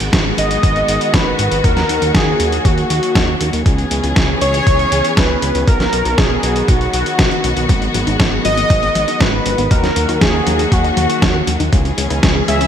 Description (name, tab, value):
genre	italo disco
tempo	119 BPM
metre	4/4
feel	straight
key	G# minor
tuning	A4 = 438 Hz
part	warm studio string section	sustained chords	0.0-12.7 s	D#3 to G#4	-20 LUFS	left 1 dB	none
part	fat analog bass	bass	0.0-12.7 s	G#1 to D#2	-20 LUFS	equal	none
part	dusty soul sampler-style drum kit	drums	0.0-12.7 s	hi-hat, snare drum	-19 LUFS	equal	overdrive, gated reverb
part	electronic kick drum	drums	0.1-12.3 s	none	-16 LUFS	equal	overdrive
part	wide unison lead	melody	0.4-12.7 s	F#4 to E5	-18 LUFS	equal	ping-pong delay
part	wide unison pluck	arpeggios	7.7-12.7 s	F#3 to A#4	-24 LUFS	left 4 dB	digital delay
room	moderate plate reverb, RT60 2.8 s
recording	bright 1980s-style digital production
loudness	-12 LUFS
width	side -9 dB against mid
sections	0.0-12.7 A section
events	none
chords	0.0 G#m7; 1.6 D#m; 3.7 C#m7; 5.7 B; 7.7 G#m7; 9.7 D#m; 11.7 C#m7